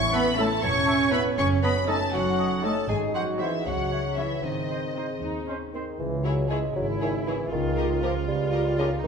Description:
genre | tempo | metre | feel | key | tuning
cinematic, playful, whimsical film cue | 79 BPM (dotted quarters) | 6/8 | straight | C# minor | A4 = 441 Hz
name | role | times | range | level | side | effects
warm studio violin section | melody | 0.0-8.9 s | C#5 to C#6 | -34 LUFS | left 4 dB | none
rich studio violin section | second line | 0.0-8.9 s | G#4 to C#6 | -32 LUFS | left 1 dB | none
mellow bassoon | accompaniment | 0.0-9.1 s | C#3 to E4 | -30 LUFS | right 2 dB | none
concert harp | arpeggios | 0.0-9.1 s | F#2 to C#5 | -33 LUFS | left 7 dB | none
rich studio double bass section | bass | 0.0-9.1 s | E1 to D#2 | -32 LUFS | right 3 dB | none
clear clarinet | second line | 0.1-5.2 s | D#4 to C#5 | -31 LUFS | left 1 dB | none
hollow flute section | second line | 0.1-5.8 s | D#5 to A5 | -39 LUFS | left 2 dB | none
warm oboe | second line | 0.1-5.8 s | B#4 to E5 | -38 LUFS | right 2 dB | none
dark French horn section | sustained chords | 0.1-5.2 s | D#3 to C#4 | -32 LUFS | left 2 dB | none
dark studio cello section | bass | 0.1-9.1 s | D#3 to E#4 | -30 LUFS | right 4 dB | none
warm studio viola section | accompaniment | 0.4-8.9 s | B#3 to G4 | -37 LUFS | right 1 dB | none
warm tuba | bass | 6.0-9.1 s | G#1 to C#2 | -32 LUFS | right 3 dB | none
room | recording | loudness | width
wet scoring stage reverb, RT60 1.8 s | minimal, uncompressed stereo recording | -23 LUFS | side -6 dB against mid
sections
0.0-6.0 A section; 6.0-9.1 B section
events
none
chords
0.0 A; 1.4 D#m7b5/F#; 2.9 G#7; 3.7 C#m; 4.4 G#; 6.0 C#m; 7.5 D#7/C#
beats
0.62 | 1.37 2.13 | 2.89 3.66 | 4.43 5.21 | 6.00 6.77 | 7.53 8.28 | 9.04

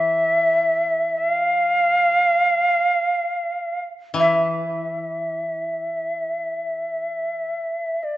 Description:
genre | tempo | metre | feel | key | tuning
japanese traditional, Japanese chamber music | free time | none | none | unclear | A4 = 440 Hz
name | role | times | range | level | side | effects
breathy mellow shakuhachi | melody | 0.0-8.2 s | D5 to F5 | -19 LUFS | equal | none
koto | accompaniment | 0.0-7.5 s | E3 | -29 LUFS | left 1 dB | none
room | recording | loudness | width
moderate recital hall reverb, RT60 1.8 s | nothing above 8.0 kHz | -19 LUFS | side -15 dB against mid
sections
0.0-8.2 A section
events
none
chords
none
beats
free time

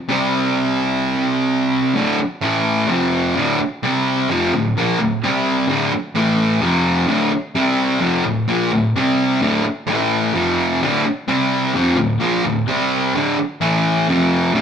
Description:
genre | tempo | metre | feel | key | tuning
rock | 129 BPM | 4/4 | straight | D minor | A4 = 441 Hz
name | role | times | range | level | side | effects
fuzz guitar | solo | 0.1-14.6 s | D2 to C4 | -15 LUFS | equal | distortion
room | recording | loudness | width
wet stone room reverb, RT60 1.0 s | band playing live in one room | -15 LUFS | side -7 dB against mid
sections
0.0-2.0 A section; 2.0-14.6 B section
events
none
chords
0.1 C5; 2.0 D5; 2.4 A5; 2.9 F5; 3.4 D5; 3.8 C5; 4.3 Dm; 5.2 C5; 5.7 D5; 6.2 A5; 6.6 F5; 7.1 D5; 7.6 C5; 8.0 Dm; 9.0 C5; 9.4 D5; 9.9 A5; 10.3 F5; 10.8 D5; 11.3 C5; 11.7 Dm; 12.7 C5; 13.1 D5; 13.6 A5; 14.1 F5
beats
| 0.09 0.56 1.02 1.49 | 1.96 2.43 2.89 3.36 | 3.83 4.29 4.76 5.22 | 5.69 6.16 6.62 7.09 | 7.55 8.02 8.49 8.95 | 9.42 9.88 10.35 10.81 | 11.28 11.74 12.21 12.67 | 13.13 13.60 14.06 14.53

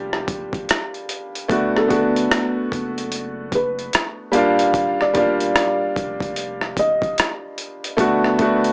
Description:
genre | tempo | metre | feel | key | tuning
lo-fi hip hop | 74 BPM | 4/4 | swing 62% on 16ths | unclear | A4 = 440 Hz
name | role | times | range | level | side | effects
bright upright piano | accompaniment | 0.0-8.7 s | G3 to G4 | -23 LUFS | equal | cassette tape
soft dub sub bass | bass | 0.0-8.7 s | D1 to G1 | -39 LUFS | equal | none
dusty soul sampler-style drum kit | drums | 0.1-8.7 s | hi-hat, kick drum, rim click | -25 LUFS | equal | none
felt-muted upright piano | melody | 1.8-7.1 s | A4 to Eb5 | -25 LUFS | equal | none
room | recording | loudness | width
moderate studio reverb, RT60 0.5 s | cassette tape, small speaker sound | -20 LUFS | mono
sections
0.0-8.7 A section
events
none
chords
0.0 Ebmaj9 (rootless); 1.5 Gmaj9; 4.3 Ebmaj9; 8.0 Gmaj9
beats
0.69 | 1.50 2.31 3.12 3.93 | 4.74 5.55 6.36 7.17 | 7.98

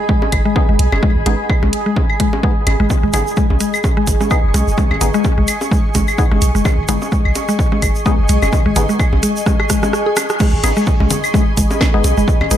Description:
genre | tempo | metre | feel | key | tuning
minimal techno | 128 BPM | 4/4 | swing 56% on 16ths | G# minor | A4 = 440 Hz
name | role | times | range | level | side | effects
bubbling stepped-filter texture | texture | 0.0-10.4 s | G#4 | -27 LUFS | right 4 dB | chorus, built-in reverb, sidechain pumping
granular cloud pad | texture | 0.0-12.6 s | G#4 to C#6 | -23 LUFS | right 1 dB | built-in reverb, sidechain pumping
mallet-like synth pluck | riff | 0.1-12.5 s | G#3 to G#4 | -20 LUFS | left 2 dB | chorus, sidechain pumping, digital delay
electronic kick drum | drums | 0.1-12.4 s | none | -16 LUFS | equal | studio reverb
bongos, claves and congas | percussion | 0.2-12.5 s | none | -23 LUFS | left 2 dB | studio reverb, digital delay
punchy sub bass | bass | 0.3-12.6 s | F#1 to B1 | -17 LUFS | equal | sidechain pumping
garage drum kit | drums | 0.3-12.6 s | crash cymbal, hi-hat, rim click, snare drum | -21 LUFS | right 1 dB | studio reverb
wavetable chord stab | stabs | 0.6-12.6 s | B3 to G#4 | -24 LUFS | left 2 dB | digital delay
tube shaker | percussion | 2.9-12.6 s | none | -27 LUFS | right 4 dB | none
room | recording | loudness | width
light reverb | none | -12 LUFS | side -11 dB against mid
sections
0.0-10.4 A section; 10.4-12.6 B section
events
drum fill 9.5-10.4; kick drops out 9.9-10.4; band accent 10.3; drop 10.4-12.6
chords
0.0 G#m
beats
0.09 0.56 | 1.03 1.50 1.96 2.43 | 2.90 3.37 3.84 4.31 | 4.78 5.25 5.71 6.18 | 6.65 7.12 7.59 8.06 | 8.53 8.99 9.46 9.93 | 10.40 10.87 11.34 11.81 | 12.28

